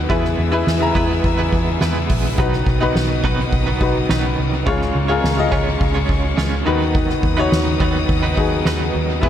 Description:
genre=piano-driven pop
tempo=105 BPM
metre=4/4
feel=straight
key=B major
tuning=A4 = 442 Hz
part: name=bright upright piano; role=accompaniment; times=0.0-9.3 s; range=G#2 to A#5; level=-21 LUFS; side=left 4 dB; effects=tape echo
part: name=warm studio string section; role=sustained chords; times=0.0-9.3 s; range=G#4 to E6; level=-28 LUFS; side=left 4 dB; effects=none
part: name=direct-recorded clean electric guitar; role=riff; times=0.0-9.3 s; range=B2 to C#5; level=-24 LUFS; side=right 7 dB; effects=tremolo
part: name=vintage muted picked electric bass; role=bass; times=0.0-9.3 s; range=E1 to E2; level=-21 LUFS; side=equal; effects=none
part: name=soft-mallet drum kit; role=drums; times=0.1-9.3 s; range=hi-hat, kick drum, ride cymbal, snare drum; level=-21 LUFS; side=equal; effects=tape echo
room=light reverb, small room ambience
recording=echo-heavy mix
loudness=-15 LUFS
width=side -10 dB against mid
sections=0.0-9.3 A section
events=none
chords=0.1 E; 2.4 B; 4.7 C#; 6.7 B/D#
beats=| 0.10 0.67 1.24 1.81 | 2.39 2.96 3.53 4.10 | 4.67 5.24 5.81 6.38 | 6.95 7.52 8.09 8.66 | 9.23

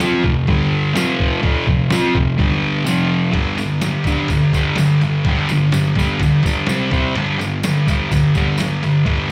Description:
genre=garage rock duo or trio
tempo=126 BPM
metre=4/4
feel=straight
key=unclear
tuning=A4 = 440 Hz
part: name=thick fuzz guitar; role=riff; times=0.0-9.3 s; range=F2 to F4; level=-18 LUFS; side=equal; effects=distortion, slapback echo
part: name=lo-fi sampler-style drum kit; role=drums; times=0.0-9.2 s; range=crash cymbal, kick drum, ride cymbal, snare drum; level=-24 LUFS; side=equal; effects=none
part: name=tambourine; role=percussion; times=0.0-8.9 s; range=none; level=-37 LUFS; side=equal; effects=none
room=light reverb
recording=live gig heard through the venue's PA, club reverb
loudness=-17 LUFS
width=mono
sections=0.0-3.3 A section; 3.3-9.3 B section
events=kick and snare drop out 2.9-3.3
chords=0.5 G5; 1.0 F5; 2.4 G5; 2.9 F5; 3.3 G5; 6.7 C5; 7.2 G5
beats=0.01 0.49 0.96 | 1.44 1.92 2.39 2.87 | 3.35 3.82 4.30 4.78 | 5.25 5.73 6.21 6.68 | 7.16 7.64 8.11 8.59 | 9.06

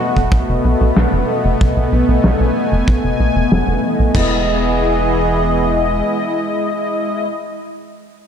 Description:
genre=synthwave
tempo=94 BPM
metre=4/4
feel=straight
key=E major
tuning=A4 = 440 Hz
part: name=soft supersaw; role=sustained chords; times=0.0-7.3 s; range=E3 to G#5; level=-18 LUFS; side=equal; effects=phaser, sidechain pumping
part: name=mellow synth brass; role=stabs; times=0.0-7.3 s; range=B2 to F#5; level=-20 LUFS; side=left 2 dB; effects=chorus, ping-pong delay
part: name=huge arena drum kit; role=drums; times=0.0-4.3 s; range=crash cymbal, hi-hat, snare drum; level=-21 LUFS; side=left 1 dB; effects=low-pass filter on hats, low-pass filter on cymbals, low-pass filter on snare, low-pass filter on room
part: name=tight sequencer bass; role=bass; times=0.2-6.0 s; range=E1 to B1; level=-17 LUFS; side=equal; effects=none
part: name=kick drum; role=drums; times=0.2-4.3 s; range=none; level=-19 LUFS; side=equal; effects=none
room=moderate concert hall reverb, RT60 2.2 s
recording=dark, warm production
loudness=-13 LUFS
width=side -8 dB against mid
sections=0.0-4.2 A section; 4.2-6.7 B section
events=filter sweep on drum 0.0-4.2; filter sweep on analog synth bass 0.0-4.2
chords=0.0 B7; 4.2 Emaj7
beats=0.32 0.96 | 1.60 2.24 2.88 3.52 | 4.15 4.79 5.43 6.07

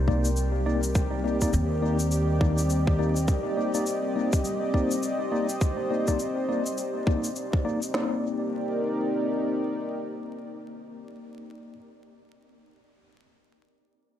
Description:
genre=ambient dub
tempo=103 BPM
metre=4/4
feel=swing 60% on 16ths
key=C minor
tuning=A4 = 440 Hz
part: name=warm analog pad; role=sustained chords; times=0.0-11.0 s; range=C4 to Eb5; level=-30 LUFS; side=equal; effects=chorus
part: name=upright bass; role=bass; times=0.0-3.3 s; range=C2 to Eb2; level=-25 LUFS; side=equal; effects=none
part: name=bubbling stepped-filter texture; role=texture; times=0.0-8.0 s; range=G3 to G4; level=-36 LUFS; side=right 1 dB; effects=chorus, built-in reverb
part: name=mellow tine electric piano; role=stabs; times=0.1-11.7 s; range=Bb3 to D5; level=-31 LUFS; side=left 2 dB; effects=medium stereo tremolo, low-pass filter, dub echo
part: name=organic electronic drum kit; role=drums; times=0.1-8.1 s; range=kick drum, snare drum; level=-26 LUFS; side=equal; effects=overdrive
part: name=cabasa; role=drums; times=0.2-7.9 s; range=none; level=-38 LUFS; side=left 3 dB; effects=dub echo
room=light reverb, digital ambience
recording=vinyl crackle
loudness=-24 LUFS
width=side -10 dB against mid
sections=0.0-7.9 A section; 7.9-10.3 B section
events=none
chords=0.0 Cm9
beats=0.37 | 0.95 1.53 2.12 2.70 | 3.28 3.86 4.45 5.03 | 5.61 6.19 6.78 7.36 | 7.94 8.52 9.11 9.69

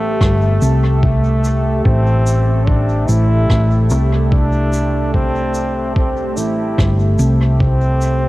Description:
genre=ambient dub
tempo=73 BPM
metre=4/4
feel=swing 57% on 16ths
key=A minor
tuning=A4 = 440 Hz
part: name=clear trombone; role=melody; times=0.0-8.3 s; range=A3 to E4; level=-21 LUFS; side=equal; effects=dub echo
part: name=deep dark ambient pad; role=sustained chords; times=0.0-8.3 s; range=A3 to E5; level=-22 LUFS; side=equal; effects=chorus, built-in reverb, cassette tape
part: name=hollow-body short-scale fingered electric bass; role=bass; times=0.0-8.3 s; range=G1 to C2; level=-15 LUFS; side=equal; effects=none
part: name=electronic kick drum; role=drums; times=0.2-7.8 s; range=none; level=-17 LUFS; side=equal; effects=cassette tape
part: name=rim click and shaker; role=drums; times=0.2-8.2 s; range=none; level=-30 LUFS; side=equal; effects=cassette tape, dub echo
room=small room ambience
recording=home recording on cassette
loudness=-12 LUFS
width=side -18 dB against mid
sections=0.0-8.3 A section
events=none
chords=0.0 Am7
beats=0.20 1.03 | 1.85 2.67 3.49 4.32 | 5.14 5.96 6.78 7.60

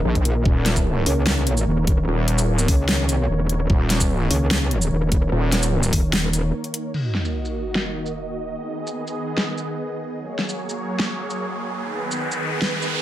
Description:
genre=heavy wobble dubstep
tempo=148 BPM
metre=4/4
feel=half-time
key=Eb minor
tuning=A4 = 442 Hz
part: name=supersaw pad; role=sustained chords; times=0.0-13.0 s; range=Eb3 to Eb5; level=-27 LUFS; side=right 1 dB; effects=phaser, sidechain pumping, low-pass filter
part: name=metallic wobble bass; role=bass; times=0.0-6.5 s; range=Eb1 to Db2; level=-20 LUFS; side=equal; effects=chorus, overdrive
part: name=wobble bass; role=bass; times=0.1-5.9 s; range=Eb1 to Bb1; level=-20 LUFS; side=equal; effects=chorus, overdrive
part: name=dubstep drum kit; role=drums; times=0.2-12.9 s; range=crash cymbal, hi-hat, shaker, snare drum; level=-24 LUFS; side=equal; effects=overdrive, low-pass filter on snare, low-pass filter on hats, low-pass filter on perc, low-pass filter on cymbals
part: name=electronic kick drum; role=drums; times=0.2-6.0 s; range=none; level=-20 LUFS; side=equal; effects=overdrive
part: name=sub drop and riser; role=sound effects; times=6.9-13.0 s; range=none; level=-28 LUFS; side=equal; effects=none
room=digital ambience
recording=none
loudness=-20 LUFS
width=side -13 dB against mid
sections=0.0-6.9 A section; 6.9-13.0 B section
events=drop 0.0-6.9; break 6.1-6.9; impact 6.9-8.6; filter sweep on supersaw synth 6.9-13.0; riser 11.3-13.0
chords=0.0 Eb5; 6.9 Ebm; 8.6 Abm; 10.2 Gbadd9; 11.8 Abm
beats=0.05 | 0.46 0.86 1.27 1.67 | 2.08 2.48 2.89 3.29 | 3.70 4.10 4.51 4.91 | 5.32 5.72 6.13 6.54 | 6.94 7.35 7.75 8.16 | 8.56 8.97 9.37 9.78 | 10.18 10.59 10.99 11.40 | 11.81 12.21 12.62

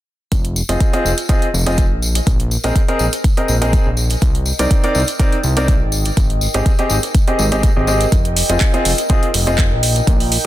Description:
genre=piano house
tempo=123 BPM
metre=4/4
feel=swing 53% on 16ths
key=F minor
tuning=A4 = 440 Hz
part: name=fat analog bass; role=bass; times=0.3-10.4 s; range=F1 to C2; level=-18 LUFS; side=equal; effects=sidechain pumping
part: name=electronic kick drum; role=drums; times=0.3-10.2 s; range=none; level=-15 LUFS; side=equal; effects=none
part: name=house drum kit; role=drums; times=0.3-10.4 s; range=handclaps, hi-hat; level=-22 LUFS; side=right 3 dB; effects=none
part: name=tambourine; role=percussion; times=0.3-10.4 s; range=none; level=-26 LUFS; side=left 2 dB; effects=none
part: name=deep dark ambient pad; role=texture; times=2.2-10.5 s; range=Bb4 to G5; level=-26 LUFS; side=equal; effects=chorus, built-in reverb, sidechain pumping
part: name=clear baby grand piano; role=riff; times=0.7-9.6 s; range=C4 to Eb5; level=-19 LUFS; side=equal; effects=sidechain pumping, digital delay
room=little or no reverb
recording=dense, heavily limited modern master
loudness=-13 LUFS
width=side -14 dB against mid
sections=0.3-10.5 A section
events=fade-in on ambient pad 0.3-10.5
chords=0.3 Fm7; 2.0 Bb9sus4; 4.2 Cm9; 5.9 Abmaj7; 8.1 Fm7; 9.8 Bbsus4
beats=| 0.32 0.81 1.29 1.78 | 2.27 2.76 3.25 3.73 | 4.22 4.71 5.20 5.68 | 6.17 6.66 7.15 7.63 | 8.12 8.61 9.10 9.59 | 10.07

